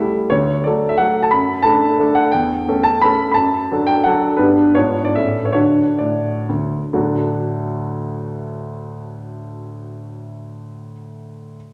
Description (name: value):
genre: classical, romantic triple-time dance for piano with dotted rhythms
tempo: 122-188 BPM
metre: 3/4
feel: rubato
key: D major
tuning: A4 = 441 Hz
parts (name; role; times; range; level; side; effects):
- warm grand piano; solo; 0.0-11.6 s; D2 to B5; -18 LUFS; equal; none
room: wet recital hall reverb, RT60 1.6 s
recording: none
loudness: -17 LUFS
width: mono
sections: 0.0-6.9 A section; 6.9-9.5 B section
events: slowing down 3.9-6.9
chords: 0.3 D; 1.3 D/F#; 2.3 A7/E; 3.4 D/F#; 4.4 G; 4.7 G#dim7; 5.1 A; 5.5 D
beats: | 0.31 0.65 0.99 | 1.32 1.65 2.00 | 2.34 2.68 3.03 | 3.35 3.69 4.04 | 4.38 4.75 5.15 | 5.55 6.00 6.48 | 6.93 7.36 7.79 | 8.20 8.61 9.05